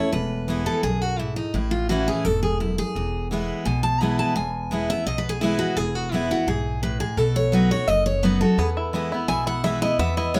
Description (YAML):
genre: bluegrass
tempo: 171 BPM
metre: 4/4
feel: straight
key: E major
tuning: A4 = 440 Hz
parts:
  - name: picked steel-string acoustic guitar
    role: melody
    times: 0.0-10.4 s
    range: D#4 to B5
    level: -27 LUFS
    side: equal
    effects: none
  - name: picked steel-string acoustic guitar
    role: accompaniment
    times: 0.0-10.4 s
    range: E2 to F#4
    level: -27 LUFS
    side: equal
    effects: none
  - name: upright bass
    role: bass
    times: 0.1-10.4 s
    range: E1 to E2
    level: -30 LUFS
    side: equal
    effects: none
  - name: bluegrass banjo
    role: melody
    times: 8.6-10.4 s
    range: B3 to E4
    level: -30 LUFS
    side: equal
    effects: none
room: moderate studio reverb, RT60 0.5 s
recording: none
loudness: -23 LUFS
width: mono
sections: 0.0-10.4 A section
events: none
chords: 0.1 E; 1.5 A; 3.0 E; 7.2 B; 8.6 E